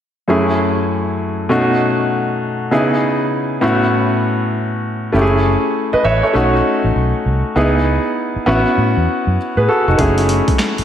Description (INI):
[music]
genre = R&B, new jack swing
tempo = 99 BPM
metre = 4/4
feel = swing 63% on 16ths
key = F# dorian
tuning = A4 = 439 Hz
[part]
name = clear grand piano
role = accompaniment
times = 0.3-10.8 s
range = F#2 to E5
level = -14 LUFS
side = equal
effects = slapback echo
[part]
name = vintage muted fingered electric bass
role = bass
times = 5.1-10.8 s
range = E#1 to A2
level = -17 LUFS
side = equal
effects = none
[part]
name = boom bap sampler-style drum kit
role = drums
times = 10.0-10.8 s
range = handclaps, hi-hat, kick drum, snare drum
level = -18 LUFS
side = equal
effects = overdrive
[sound]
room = wet scoring stage reverb, RT60 1.9 s, digital ambience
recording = big arena sound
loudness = -13 LUFS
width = side -9 dB against mid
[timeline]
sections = 0.3-10.0 A section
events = none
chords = 0.3 F#m9; 1.5 B7; 2.7 C#m7; 3.6 A69; 5.1 F#m9; 6.3 B7; 7.6 C#m7; 8.5 A69; 10.0 F#m9